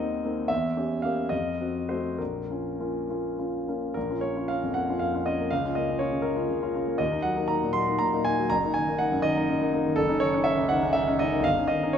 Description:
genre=classical, romantic character piece for solo piano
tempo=66-84 BPM (dotted quarters)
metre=6/8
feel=rubato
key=Bb minor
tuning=A4 = 439 Hz
part: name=warm concert grand piano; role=solo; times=0.0-12.0 s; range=Gb1 to C6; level=-24 LUFS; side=equal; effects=none
room=moderate recital hall reverb, RT60 1.8 s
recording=none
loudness=-24 LUFS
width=side -8 dB against mid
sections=0.0-4.0 A section; 4.0-12.0 B section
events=none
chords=0.5 Edim7; 1.3 F7b9; 2.2 Bbm; 5.5 Bbm/Db; 7.0 Ebm; 8.5 Ebm/Gb; 10.0 F#m6; 11.4 D#7/G

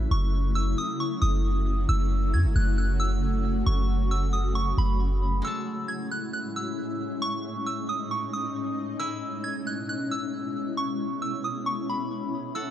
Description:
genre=hip hop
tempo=135 BPM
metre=4/4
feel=half-time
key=unclear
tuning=A4 = 440 Hz
part: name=soft synth bell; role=melody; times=0.0-12.7 s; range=B5 to G#6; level=-32 LUFS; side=right 2 dB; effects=chorus, phaser, tape echo
part: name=shimmering ambient pad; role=sustained chords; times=0.0-12.7 s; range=A2 to F#4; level=-30 LUFS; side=left 1 dB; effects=chorus, built-in reverb
part: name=warm 808-style bass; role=bass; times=0.0-5.4 s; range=F#1 to F#2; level=-24 LUFS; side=equal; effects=none
part: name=koto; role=texture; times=0.0-12.7 s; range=G#3 to A5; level=-44 LUFS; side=left 1 dB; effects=none
room=little or no reverb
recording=dark, warm production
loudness=-25 LUFS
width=side -11 dB against mid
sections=0.0-5.4 A section; 5.4-12.7 B section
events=none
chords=0.0 F#m7; 5.4 Amaj7; 9.0 E6

